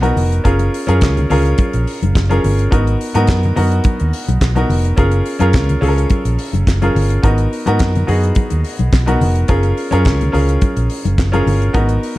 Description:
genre	disco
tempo	106 BPM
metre	4/4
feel	straight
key	unclear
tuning	A4 = 440 Hz
part	bright baby grand piano	accompaniment	0.0-12.2 s	B3 to A#4	-18 LUFS	equal	none
part	fingered electric bass	bass	0.0-12.0 s	E#1 to G#2	-15 LUFS	equal	none
part	damped 70s drum kit	drums	0.0-12.2 s	handclaps, hi-hat, kick drum, snare drum	-18 LUFS	equal	none
part	congas	percussion	0.0-12.2 s	none	-23 LUFS	left 3 dB	none
room	light reverb, small room reverb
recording	dark, warm production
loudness	-12 LUFS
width	side -17 dB against mid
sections	0.0-12.2 A section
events	none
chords	0.5 F#maj9; 2.7 G#m7; 5.0 F#maj9; 7.2 G#m7; 9.5 F#maj9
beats	| 0.45 1.02 1.58 2.15 | 2.71 3.28 3.85 4.41 | 4.98 5.54 6.11 6.67 | 7.24 7.80 8.37 8.93 | 9.49 10.06 10.62 11.18 | 11.75

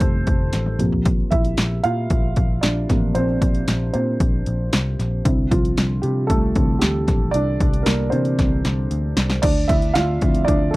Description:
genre	piano-driven pop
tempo	115 BPM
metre	4/4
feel	straight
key	unclear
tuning	A4 = 440 Hz
part	dark upright piano	accompaniment	0.0-10.8 s	C3 to F5	-22 LUFS	right 1 dB	none
part	vintage muted picked electric bass	bass	0.0-10.8 s	F1 to C3	-22 LUFS	equal	none
part	punchy analog drum machine	drums	0.0-10.8 s	crash cymbal, hi-hat, kick drum, snare drum, toms	-20 LUFS	equal	none
room	little or no reverb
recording	dry, close 1970s-style studio recording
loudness	-17 LUFS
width	side -19 dB against mid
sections	0.0-9.4 A section; 9.4-10.8 B section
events	upright piano solo 0.0-9.4, 9.4-10.8; drum fill 0.5-1.1, 8.4-9.4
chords	0.0 F7; 0.8 Bbsus2; 5.3 Cadd9; 9.4 Dm7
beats	0.01 0.54 | 1.06 1.59 2.11 2.63 | 3.16 3.68 4.20 4.73 | 5.25 5.77 6.30 6.82 | 7.34 7.87 8.39 8.91 | 9.43 9.96 10.48

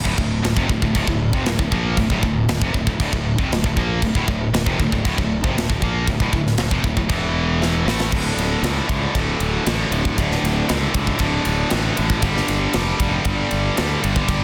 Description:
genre	heavy metal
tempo	117 BPM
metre	4/4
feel	straight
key	D minor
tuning	A4 = 439 Hz
part	heavy high-gain guitar	riff	0.0-14.4 s	D2 to Bb3	-23 LUFS	equal	distortion
part	fuzz fingered electric bass	bass	0.0-14.4 s	D1 to D2	-26 LUFS	equal	overdrive
part	tight metal drum kit	drums	0.1-14.4 s	crash cymbal, kick drum, ride cymbal, snare drum	-25 LUFS	equal	none
room	studio ambience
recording	dense, heavily limited modern master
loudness	-20 LUFS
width	mono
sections	0.0-8.1 A section; 8.1-14.4 B section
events	drum fill 7.6-8.1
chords	0.0 Dm; 7.1 E5; 7.9 A5; 8.1 D5; 12.2 G5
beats	0.43 0.95 1.46 | 1.97 2.48 3.00 3.51 | 4.02 4.53 5.04 5.56 | 6.07 6.58 7.09 7.61 | 8.12 8.63 9.14 9.66 | 10.17 10.69 11.20 11.71 | 12.23 12.74 13.26 13.77 | 14.29

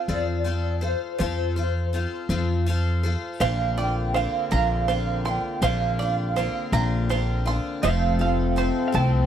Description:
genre	folk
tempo	54 BPM (dotted quarters)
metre	6/8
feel	straight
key	F major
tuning	A4 = 435 Hz
part	electric guitar through a small old amp	melody	0.0-9.3 s	C5 to G5	-28 LUFS	right 3 dB	tremolo
part	picked twelve-string acoustic guitar	accompaniment	0.0-9.3 s	F2 to C5	-30 LUFS	left 5 dB	none
part	upright bass	bass	0.1-9.3 s	F1 to F2	-24 LUFS	equal	none
part	hand-pumped harmonium	sustained chords	3.4-9.3 s	D3 to A4	-35 LUFS	right 1 dB	none
part	bluegrass banjo	arpeggios	3.4-9.3 s	C5 to C6	-30 LUFS	right 8 dB	none
part	mellow French horn	second line	7.8-9.3 s	C4	-27 LUFS	left 8 dB	none
part	clear upright piano	accompaniment	7.8-9.3 s	F1 to C5	-31 LUFS	right 14 dB	none
room	small room ambience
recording	dry, close 1970s-style studio recording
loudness	-22 LUFS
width	side -9 dB against mid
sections	0.0-7.8 A section; 7.8-9.3 B section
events	none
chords	0.0 F; 3.4 Bbadd9; 7.8 F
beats	0.09 | 1.20 2.31 | 3.41 4.52 | 5.62 6.73 | 7.84 8.94

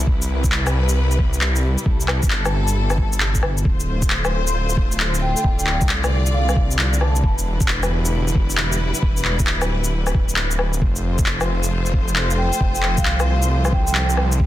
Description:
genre	future garage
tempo	134 BPM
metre	4/4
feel	swing 66% on 16ths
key	unclear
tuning	A4 = 439 Hz
part	rich studio string section	sustained chords	0.0-14.5 s	C3 to D5	-26 LUFS	left 1 dB	sidechain pumping
part	swelling detuned saw bass	bass	0.0-14.5 s	D1 to C2	-20 LUFS	equal	tube saturation, sidechain pumping
part	electronic kick drum	drums	0.1-14.5 s	none	-20 LUFS	equal	none
part	electronic shaker, handclaps and woodblock	drums	0.2-14.4 s	none	-22 LUFS	left 1 dB	none
part	vibraphone with soft mallets	melody	5.2-7.3, 12.4-14.2 s	F5 to A5	-26 LUFS	right 1 dB	tape echo
room	little or no reverb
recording	dense, heavily limited modern master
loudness	-17 LUFS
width	side -14 dB against mid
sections	0.0-14.5 A section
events	none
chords	0.1 Cmaj7; 3.7 Dm7; 7.2 Em7; 10.8 F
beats	| 0.07 0.52 0.97 1.41 | 1.86 2.31 2.76 3.21 | 3.65 4.10 4.55 5.00 | 5.44 5.89 6.34 6.79 | 7.23 7.68 8.13 8.58 | 9.03 9.47 9.92 10.37 | 10.82 11.26 11.71 12.16 | 12.61 13.05 13.50 13.95 | 14.40

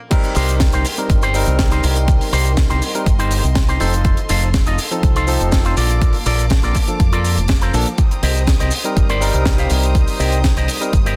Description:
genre	nu-disco, nu disco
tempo	122 BPM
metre	4/4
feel	straight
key	C dorian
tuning	A4 = 440 Hz
part	barky tine electric piano	accompaniment	0.1-10.9 s	F3 to Bb4	-26 LUFS	equal	digital delay
part	warm studio string section	sustained chords	0.1-11.2 s	Bb3 to Eb6	-32 LUFS	equal	sidechain pumping
part	electronic kick drum	drums	0.1-11.0 s	none	-18 LUFS	equal	studio reverb
part	tight funk drum kit	drums	0.1-11.2 s	crash cymbal, hi-hat, shaker, snare drum	-26 LUFS	equal	studio reverb
part	electric guitar with an envelope filter	riff	0.4-11.2 s	Eb4 to F5	-26 LUFS	equal	subtle chorus, digital delay
part	fingered electric bass with an envelope filter	bass	0.4-11.2 s	F1 to F2	-20 LUFS	equal	none
room	light reverb, small room ambience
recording	dense, heavily limited modern master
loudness	-16 LUFS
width	mono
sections	0.1-11.2 A section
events	drop 0.1-11.2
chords	0.1 Cm7; 3.8 F7; 5.8 Bbmaj7; 8.0 Cm7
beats	| 0.11 0.60 1.10 1.59 | 2.08 2.57 3.06 3.56 | 4.05 4.54 5.03 5.52 | 6.01 6.51 7.00 7.49 | 7.98 8.47 8.97 9.46 | 9.95 10.44 10.93

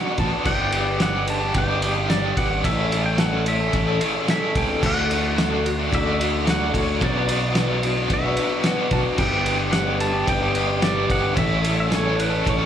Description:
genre	folk rock and heartland rock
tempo	110 BPM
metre	4/4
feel	straight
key	unclear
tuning	A4 = 441 Hz
part	clean lap steel guitar	melody	0.0-12.7 s	B4 to A5	-27 LUFS	right 1 dB	plate reverb
part	picked plugged-in twelve-string acoustic guitar	accompaniment	0.0-12.7 s	A2 to B4	-29 LUFS	left 4 dB	plate reverb, slapback echo
part	biting overdriven guitar	riff	0.0-12.7 s	G2 to A4	-24 LUFS	equal	tremolo, slapback echo
part	fingered electric bass	bass	0.2-12.7 s	G1 to D2	-25 LUFS	equal	none
part	cloth-damped thuddy drum kit	drums	0.2-12.6 s	crash cymbal, kick drum, ride cymbal, snare drum	-24 LUFS	equal	none
part	mellow tonewheel organ	sustained chords	4.5-12.7 s	G3 to C#5	-31 LUFS	left 1 dB	none
room	moderate club reverb, RT60 0.5 s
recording	live gig heard through the venue's PA, club reverb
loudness	-19 LUFS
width	side -9 dB against mid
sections	0.0-12.7 A section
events	none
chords	0.5 G; 2.6 A; 4.8 D; 7.0 Bm; 9.2 G; 11.4 A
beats	| 0.47 1.01 1.56 2.10 | 2.65 3.19 3.74 4.29 | 4.83 5.38 5.92 6.47 | 7.01 7.56 8.10 8.65 | 9.19 9.74 10.28 10.83 | 11.38 11.92 12.47

